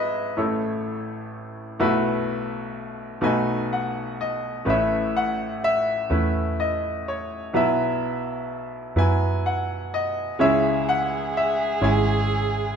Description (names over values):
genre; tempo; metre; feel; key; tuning
folk; 42 BPM (dotted quarters); 6/8; straight; unclear; A4 = 439 Hz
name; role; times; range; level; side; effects
bright baby grand piano; melody; 0.0-12.8 s; G#1 to G#5; -22 LUFS; equal; none
vintage muted fingered electric bass; bass; 4.7-12.8 s; G#1 to F#2; -25 LUFS; right 1 dB; none
dark violin; second line; 10.4-12.8 s; G#4; -27 LUFS; right 4 dB; none
room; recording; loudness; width
moderate large studio reverb, RT60 1.4 s; minimal, uncompressed stereo recording; -21 LUFS; side -7 dB against mid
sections
0.0-4.7 A section; 4.7-12.8 B section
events
none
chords
0.4 A; 1.8 B7sus4; 3.2 B7; 4.7 Aadd9; 7.5 Bsus4; 10.4 C#m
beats
0.37 | 1.79 3.22 | 4.66 6.10 | 7.54 8.97 | 10.39 11.81